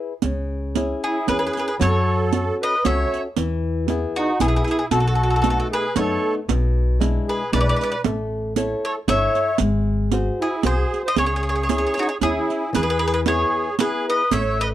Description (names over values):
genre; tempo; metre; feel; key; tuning
italian folk, Italian serenade; 115 BPM; 3/4; swing 54% on 8ths; C# minor; A4 = 435 Hz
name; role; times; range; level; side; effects
flamenco guitar; accompaniment; 0.0-14.7 s; B2 to C#5; -26 LUFS; left 2 dB; none
upright bass; bass; 0.2-14.7 s; G1 to F#2; -23 LUFS; left 1 dB; none
riq; percussion; 0.2-14.6 s; none; -24 LUFS; right 10 dB; none
bowl-back mandolin; melody; 1.0-14.7 s; F#4 to E5; -23 LUFS; left 2 dB; none
musette accordion; second line; 1.1-14.7 s; D#4 to C#5; -25 LUFS; right 4 dB; none
room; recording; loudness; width
small room ambience; dry, close 1970s-style studio recording; -18 LUFS; side -13 dB against mid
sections
0.2-12.7 A section; 12.7-14.7 B section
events
none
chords
0.2 C#m; 1.8 F#m; 3.4 E; 4.9 B7; 6.5 E7/B; 8.0 A; 9.6 G#7; 11.2 C#m; 12.7 E